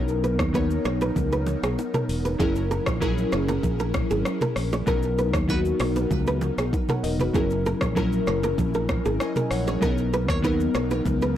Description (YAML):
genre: afrobeats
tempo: 97 BPM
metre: 4/4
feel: straight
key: B major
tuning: A4 = 440 Hz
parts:
  - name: glassy digital keys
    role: accompaniment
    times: 0.0-11.4 s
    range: F#3 to G#5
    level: -27 LUFS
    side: left 2 dB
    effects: chorus
  - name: airy breathy pad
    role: sustained chords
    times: 0.0-11.4 s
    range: F#3 to A#4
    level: -31 LUFS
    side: equal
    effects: chorus, sidechain pumping
  - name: fingered electric bass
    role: bass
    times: 0.0-11.4 s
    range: E1 to D#2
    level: -27 LUFS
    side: equal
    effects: none
  - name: afro-pop drum kit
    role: drums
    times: 0.1-11.4 s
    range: hi-hat, kick drum, rim click, shaker, toms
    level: -28 LUFS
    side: equal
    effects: soft clipping on snare
  - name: nylon-string guitar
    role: riff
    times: 0.2-11.3 s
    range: G#4 to C#5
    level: -29 LUFS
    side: right 3 dB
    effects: digital delay
  - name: bongos and congas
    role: percussion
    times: 0.6-11.2 s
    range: none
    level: -33 LUFS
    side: right 3 dB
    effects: none
room: moderate small room reverb, RT60 0.6 s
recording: blown-out, overdriven recording, overdrive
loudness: -22 LUFS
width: side -11 dB against mid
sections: 0.0-11.4 A section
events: none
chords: 0.0 Bmaj7; 2.4 F#7; 4.9 Bmaj7; 7.3 F#7; 9.8 Bmaj7